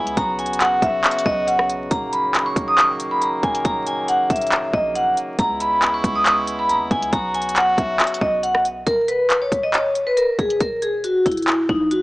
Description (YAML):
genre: hip hop, trap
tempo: 138 BPM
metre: 4/4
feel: half-time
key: Eb phrygian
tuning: A4 = 440 Hz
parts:
  - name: vibraphone with hard mallets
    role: melody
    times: 0.0-12.0 s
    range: Eb4 to Eb6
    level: -18 LUFS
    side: equal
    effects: low-pass filter
  - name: bright brass ensemble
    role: sustained chords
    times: 0.0-8.8 s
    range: Db3 to F#4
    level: -27 LUFS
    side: equal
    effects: none
  - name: warm 808-style bass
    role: bass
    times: 0.0-12.0 s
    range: Db1 to Eb2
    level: -32 LUFS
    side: equal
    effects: none
  - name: trap drum kit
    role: drums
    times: 0.1-12.0 s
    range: handclaps, hi-hat, kick drum, rim click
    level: -21 LUFS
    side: equal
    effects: none
room: light reverb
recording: vinyl crackle, small speaker sound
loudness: -17 LUFS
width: side -20 dB against mid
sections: 0.0-8.9 A section; 8.9-12.0 B section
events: none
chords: 0.2 Bsus2; 1.9 Ebm7; 5.4 Dbm7; 7.1 Bsus2; 8.9 Eb5